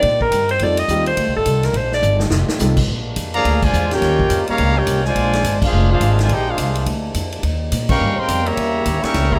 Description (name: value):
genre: jazz, big band swing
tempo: 211 BPM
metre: 4/4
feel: swing 62% on 8ths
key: unclear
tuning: A4 = 440 Hz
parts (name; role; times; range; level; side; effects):
- breathy alto saxophone; melody; 0.0-2.2 s; A4 to Eb5; -20 LUFS; equal; none
- muted trombone section; sustained chords; 0.0-9.4 s; C3 to G4; -32 LUFS; equal; none
- upright bass; bass; 0.0-9.4 s; F1 to Bb2; -22 LUFS; equal; none
- swinging big-band drum kit; drums; 0.0-9.4 s; crash cymbal, hi-hat, kick drum, ride cymbal, snare drum; -26 LUFS; equal; none
- warm baby grand piano; accompaniment; 0.6-2.8 s; G3 to A4; -25 LUFS; equal; none
- clear trumpet section; melody; 3.3-9.4 s; D4 to C#6; -22 LUFS; equal; none
- warm trombone section; second line; 3.3-9.4 s; Db3 to G4; -24 LUFS; equal; none
room: moderate club reverb, RT60 0.5 s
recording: none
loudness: -18 LUFS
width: mono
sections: 0.0-2.9 A section; 2.9-9.4 B section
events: alto saxophone solo 0.0-2.9; drum fill 2.0-2.6; band accent 3.6, 5.6, 7.9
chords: 0.0 Cm7; 0.6 F9; 1.7 Bb9; 2.3 F9; 2.9 Bb9; 4.0 Eb9; 5.2 Bb9; 7.4 Eb9; 8.6 Edim7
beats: 0.03 0.32 | 0.60 0.89 1.17 1.46 | 1.74 2.03 2.31 2.60 | 2.88 3.17 3.45 3.73 | 4.02 4.30 4.59 4.87 | 5.16 5.44 5.73 6.01 | 6.30 6.58 6.87 7.15 | 7.44 7.72 8.01 8.29 | 8.57 8.86 9.14